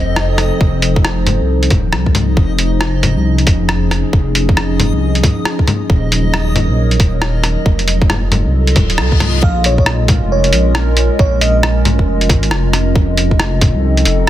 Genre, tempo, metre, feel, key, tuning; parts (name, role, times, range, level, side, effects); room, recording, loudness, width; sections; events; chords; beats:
future garage; 136 BPM; 4/4; swing 62% on 16ths; Bb minor; A4 = 442 Hz
warbly tape-like pad; sustained chords; 0.0-14.3 s; F3 to Eb5; -19 LUFS; equal; chorus, built-in reverb, sidechain pumping
dark detuned saw bass; bass; 0.0-14.3 s; Eb1 to C2; -15 LUFS; equal; tube saturation, sidechain pumping
backwards swelling texture; texture; 0.0-9.4 s; Eb5; -28 LUFS; left 2 dB; built-in reverb
lo-fi sampler-style drum kit; drums; 0.2-14.3 s; bongos, hi-hat, rim click; -17 LUFS; left 1 dB; soft clipping on snare
electronic kick drum; drums; 0.6-13.7 s; -14 LUFS; equal; overdrive
reverse cymbal; sound effects; 8.7-9.4 s; -24 LUFS; left 6 dB
bell-like FM electric piano; melody; 9.4-11.8 s; Db5 to F5; -20 LUFS; right 1 dB; chorus, tremolo, tape echo
light reverb, digital ambience; dense, heavily limited modern master; -11 LUFS; side -13 dB against mid
0.0-9.4 A section; 9.4-14.3 B section
reverse cymbal 8.7-9.4; band accent 9.0
0.0 F7; 2.4 Dbmaj9/F; 5.9 Ebm7; 7.7 F7b9; 9.4 Bbm7; 13.0 F7
0.17 | 0.61 1.05 1.49 1.93 | 2.37 2.81 3.25 3.70 | 4.14 4.58 5.02 5.46 | 5.90 6.34 6.79 7.23 | 7.67 8.11 8.55 8.99 | 9.43 9.87 10.31 10.76 | 11.20 11.64 12.08 12.52 | 12.96 13.40 13.84 14.29